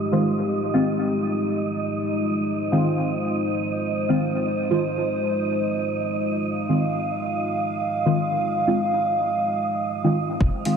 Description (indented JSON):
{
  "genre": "dub techno",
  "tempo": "121 BPM",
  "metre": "4/4",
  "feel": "straight",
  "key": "F minor",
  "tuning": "A4 = 440 Hz",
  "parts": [
    { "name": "dark analog pad", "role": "sustained chords", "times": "0.0-10.8 s", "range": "Ab3 to F5", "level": "-24 LUFS", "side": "equal", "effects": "chorus, sidechain pumping" },
    { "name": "wind-like tuned noise texture", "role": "texture", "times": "0.0-10.8 s", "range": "Eb5 to F5", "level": "-30 LUFS", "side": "right 5 dB", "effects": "built-in reverb, wide subtle chorus, sidechain pumping" },
    { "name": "deep mellow chord stab", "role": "stabs", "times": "0.1-10.8 s", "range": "Eb3 to F4", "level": "-23 LUFS", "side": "equal", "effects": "chorus, phaser, dub echo" },
    { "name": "soft dub sub bass", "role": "bass", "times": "10.4-10.5 s", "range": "F1", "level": "-25 LUFS", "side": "equal", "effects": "sidechain pumping" },
    { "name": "electronic kick drum", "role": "drums", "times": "10.4-10.5 s", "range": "none", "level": "-22 LUFS", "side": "equal", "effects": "overdrive" },
    { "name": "electronic hi-hat", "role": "drums", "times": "10.7-10.8 s", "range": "none", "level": "-33 LUFS", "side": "left 1 dB", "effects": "overdrive" }
  ],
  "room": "wet plate reverb, RT60 2.0 s",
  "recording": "dreamy mix soaked in reverb, low-pass filter",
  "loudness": "-21 LUFS",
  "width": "side -6 dB against mid",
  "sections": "0.0-10.4 A section",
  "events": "filter sweep on synth stab 0.0-10.4",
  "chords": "0.0 Fm7"
}